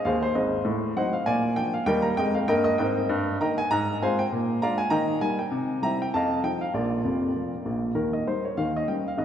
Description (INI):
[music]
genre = jazz, stride piano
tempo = 197 BPM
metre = 4/4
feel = swing 58% on 8ths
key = Eb major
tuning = A4 = 440 Hz
[part]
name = warm upright piano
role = solo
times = 0.0-9.2 s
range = F1 to Bb5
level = -23 LUFS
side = equal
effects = none
[sound]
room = wet church reverb, RT60 3.4 s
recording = recorded in a church or concert hall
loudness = -23 LUFS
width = side -9 dB against mid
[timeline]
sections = 0.0-8.0 A section; 8.0-9.2 B section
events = none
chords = 0.0 Ab; 0.7 Adim7; 1.3 Bb7; 1.9 Eb; 3.1 Eb/G; 3.7 Fm/Ab; 4.3 Bb7; 4.9 Eb; 5.5 C; 6.1 F7; 6.7 Bb; 8.0 Eb; 8.6 Eb7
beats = 0.05 0.35 | 0.66 0.96 1.27 1.57 | 1.88 2.18 2.49 2.79 | 3.10 3.40 3.71 4.01 | 4.31 4.62 4.92 5.23 | 5.53 5.83 6.14 6.44 | 6.75 7.05 7.36 7.66 | 7.96 8.27 8.57 8.88 | 9.18